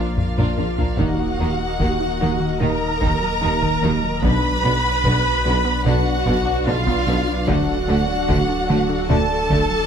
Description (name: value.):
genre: cinematic, hybrid orchestral and electronic film score.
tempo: 74 BPM.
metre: 4/4.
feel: straight.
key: Eb harmonic minor.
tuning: A4 = 440 Hz.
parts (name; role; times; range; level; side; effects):
rich studio violin section; melody; 0.0-9.9 s; F5 to B5; -24 LUFS; equal; none.
rich symphonic violin section; second line; 0.0-9.6 s; A3 to F4; -32 LUFS; left 2 dB; none.
rich symphonic viola section; accompaniment; 0.0-9.9 s; F4 to B4; -25 LUFS; right 1 dB; none.
chorused pulse-width pad; sustained chords; 0.0-9.9 s; Eb3 to Eb5; -28 LUFS; left 1 dB; none.
warbly dusty pluck; arpeggios; 0.0-9.8 s; D3 to B4; -30 LUFS; right 2 dB; chorus, tape echo.
rich symphonic cello section; bass; 0.0-9.6 s; Bb2 to Eb3; -26 LUFS; right 1 dB; none.
sub bass with octave; bass; 0.0-9.9 s; D1 to B1; -27 LUFS; left 1 dB; none.
taiko ensemble; drums; 0.2-9.9 s; none; -26 LUFS; left 1 dB; none.
mellow tuba; bass; 0.6-9.7 s; Bb1 to Eb2; -26 LUFS; right 4 dB; none.
rich symphonic double bass section; bass; 0.6-9.6 s; Bb1 to Eb2; -27 LUFS; right 1 dB; none.
warm French horn section; sustained chords; 1.0-9.4 s; A3 to Eb4; -29 LUFS; left 6 dB; none.
room: moderate scoring stage reverb, RT60 2.0 s.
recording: none.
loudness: -17 LUFS.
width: side -7 dB against mid.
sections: 0.0-9.9 A section.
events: drum fill 0.2-1.0.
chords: 0.0 Bb; 1.0 Ebm; 4.2 Bm; 7.5 D.